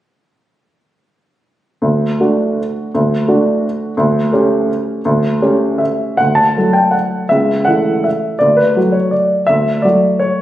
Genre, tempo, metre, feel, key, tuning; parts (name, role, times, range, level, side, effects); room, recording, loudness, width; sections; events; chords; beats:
classical, piano waltz; 144-180 BPM; 3/4; rubato; D major; A4 = 440 Hz
warm upright piano; solo; 1.8-10.4 s; C#2 to A5; -12 LUFS; equal
moderate recital hall reverb, RT60 1.3 s; recorded on a phone in the room, club reverb; -12 LUFS; side -13 dB against mid
1.8-6.2 A section; 6.2-10.4 B section
1.8 D; 4.0 A7/D; 6.2 D; 7.3 A/C#; 8.4 D
| 1.83 2.20 2.58 | 2.94 3.29 3.64 | 3.98 4.33 4.68 | 5.04 5.41 5.80 | 6.20 6.57 6.94 | 7.31 7.67 8.05 | 8.41 8.77 9.14 | 9.48 9.84 10.21